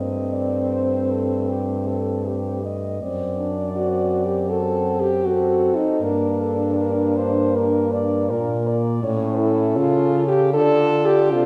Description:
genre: classical, lyrical piece for horn quartet.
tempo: 76-84 BPM.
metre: 4/4.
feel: rubato.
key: G minor.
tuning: A4 = 440 Hz.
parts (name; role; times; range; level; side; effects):
warm French horn; melody; 0.0-11.5 s; F4 to Eb5; -29 LUFS; equal; none.
mellow French horn; second line; 0.0-11.5 s; C4 to A4; -24 LUFS; equal; none.
mellow French horn; accompaniment; 0.0-11.5 s; A3 to D4; -28 LUFS; equal; none.
mellow French horn; bass; 0.0-11.5 s; F#2 to D3; -27 LUFS; equal; none.
room: wet scoring stage reverb, RT60 1.6 s.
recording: heard from further back in the room.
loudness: -21 LUFS.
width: mono.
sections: 0.0-11.5 A section.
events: none.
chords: 0.0 Cm6/G; 3.0 D7/F#; 6.0 Gm; 9.0 A; 10.5 Dm.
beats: 0.71 1.49 2.27 | 3.02 3.76 4.50 5.26 | 6.03 6.79 7.56 8.31 | 9.04 9.77 10.54 11.33.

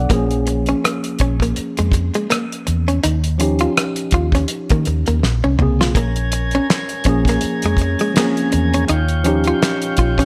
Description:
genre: R&B, neo-soul.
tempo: 82 BPM.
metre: 4/4.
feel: swing 57% on 16ths.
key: Bb dorian.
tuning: A4 = 440 Hz.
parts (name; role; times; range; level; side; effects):
tine electric piano; accompaniment; 0.0-10.2 s; Db3 to F#5; -23 LUFS; equal; subtle chorus.
vintage muted fingered electric bass; bass; 0.0-10.2 s; Bb1 to Eb3; -21 LUFS; equal; none.
hollow-body jazz guitar; second line; 0.1-10.2 s; Ab3 to F4; -24 LUFS; equal; none.
cloth-damped thuddy drum kit; drums; 0.1-10.2 s; finger snaps, hi-hat, kick drum, rim click, snare drum, toms; -21 LUFS; equal; none.
tonewheel organ; sustained chords; 5.9-10.2 s; Db4 to Ab5; -27 LUFS; equal; slow rotary speaker.
room: light reverb, studio ambience.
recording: none.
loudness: -18 LUFS.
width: mono.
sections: 0.0-6.0 A section; 6.0-10.2 A section.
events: drum fill 5.2-6.0.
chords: 0.1 Bbm7; 3.0 Eb9; 5.2 Bbm9; 6.0 Bbm7; 8.9 Eb9.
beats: | 0.10 0.83 1.56 2.29 | 3.03 3.76 4.49 5.22 | 5.95 6.68 7.42 8.15 | 8.88 9.61.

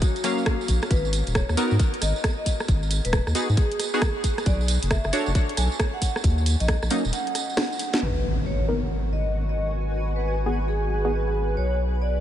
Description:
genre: UK garage, two-step garage.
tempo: 135 BPM.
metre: 4/4.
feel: swing 64% on 16ths.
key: G# minor.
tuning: A4 = 439 Hz.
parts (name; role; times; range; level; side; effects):
vibraphone with medium hard mallets; melody; 0.0-12.2 s; F#4 to G#5; -31 LUFS; left 1 dB; ping-pong delay.
electronic kick drum; drums; 0.0-6.8 s; none; -23 LUFS; equal; small room ambience.
garage drum kit; drums; 0.0-8.0 s; hi-hat, rim click, snare drum; -30 LUFS; equal; low-pass filter on snare, small room ambience, low-pass filter on hats.
tambourine; percussion; 0.0-8.0 s; none; -34 LUFS; right 6 dB; none.
punchy chord stab; stabs; 0.2-11.1 s; F#3 to E#5; -30 LUFS; equal; chorus, ping-pong delay.
saturated sub bass; bass; 0.7-12.2 s; D#1 to G#2; -24 LUFS; equal; none.
impact; sound effects; 8.0-9.8 s; none; -32 LUFS; equal; none.
granular cloud pad; texture; 9.0-12.2 s; D4 to A5; -32 LUFS; equal; built-in reverb, ensemble chorus, sidechain pumping.
room: light reverb.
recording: nothing above 11.0 kHz.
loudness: -21 LUFS.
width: side -11 dB against mid.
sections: 0.0-8.0 A section; 8.0-12.2 B section.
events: break 7.1-8.0; drum fill 7.6-8.0; impact 8.0-9.8.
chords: 0.0 D#m9 (rootless); 0.9 G#m7; 4.5 Bm9; 6.2 D#m7; 8.0 G#m7; 11.6 Bm9.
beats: 0.02 0.46 | 0.91 1.35 1.80 2.24 | 2.69 3.13 3.57 4.02 | 4.46 4.91 5.35 5.80 | 6.24 6.68 7.13 7.57 | 8.02 8.46 8.91 9.35 | 9.80 10.24 10.69 11.13 | 11.57 12.02.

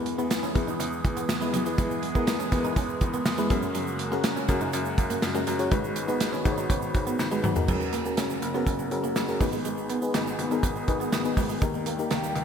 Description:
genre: 1980s-style pop.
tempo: 122 BPM.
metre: 4/4.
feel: straight.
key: G# minor.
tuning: A4 = 440 Hz.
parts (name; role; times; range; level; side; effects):
FM electric piano with tremolo; accompaniment; 0.0-12.4 s; A#3 to C#5; -30 LUFS; left 3 dB; none.
phased analog pad; sustained chords; 0.0-12.4 s; C#3 to G#4; -33 LUFS; right 1 dB; phaser, chorus.
warm baby grand piano; bass; 0.0-12.4 s; F#1 to F#2; -33 LUFS; left 2 dB; none.
clean electric guitar; riff; 0.1-12.3 s; F#3 to D#4; -34 LUFS; right 4 dB; lush chorus, ping-pong delay.
modern studio drum kit; drums; 0.1-12.4 s; crash cymbal, hi-hat, kick drum, snare drum, tambourine, toms; -28 LUFS; right 1 dB; gated reverb.
egg shaker; percussion; 0.2-12.4 s; none; -43 LUFS; right 10 dB; none.
room: wet lush hall reverb, RT60 2.1 s.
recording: bright 1980s-style digital production.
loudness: -24 LUFS.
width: side -7 dB against mid.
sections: 0.0-7.7 A section; 7.7-12.4 B section.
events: drum fill 7.2-7.7.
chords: 0.0 E; 3.5 F#add9; 5.7 G#m7; 7.7 F#add9; 9.4 G#m; 11.6 D#.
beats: 0.31 0.80 1.29 | 1.78 2.27 2.77 3.26 | 3.75 4.24 4.73 5.23 | 5.72 6.21 6.70 7.19 | 7.68 8.18 8.67 9.16 | 9.65 10.14 10.63 11.13 | 11.62 12.11.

